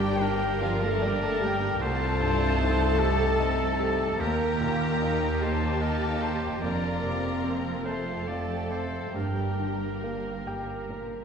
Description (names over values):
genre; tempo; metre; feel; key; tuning
cinematic, emotional film score for orchestra; 49 BPM (dotted quarters); 6/8; uneven beats, rubato; G minor; A4 = 440 Hz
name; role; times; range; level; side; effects
dark studio violin section; melody; 0.0-10.5 s; F5 to Bb5; -34 LUFS; left 4 dB; none
bright oboe; second line; 0.0-11.1 s; G4 to D5; -34 LUFS; right 1 dB; none
rich studio violin section; second line; 0.0-11.2 s; Bb3 to Bb4; -36 LUFS; left 2 dB; none
bright concert grand piano; accompaniment; 0.0-11.2 s; C2 to G5; -32 LUFS; equal; none
rich studio viola section; accompaniment; 0.0-10.4 s; F4 to Bb4; -33 LUFS; equal; none
mellow French horn section; sustained chords; 0.0-10.5 s; F3 to Bb3; -32 LUFS; left 2 dB; none
warm studio cello section; bass; 0.0-11.2 s; C2 to Bb2; -35 LUFS; right 3 dB; none
warm studio double bass section; bass; 0.0-11.2 s; F1 to Eb2; -33 LUFS; right 2 dB; none
room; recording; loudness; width
wet scoring stage reverb, RT60 1.5 s; heard from further back in the room; -25 LUFS; side -6 dB against mid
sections
0.0-11.2 A section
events
none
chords
0.0 Gm; 1.8 Cm; 4.2 Eb; 6.6 F; 9.1 Gm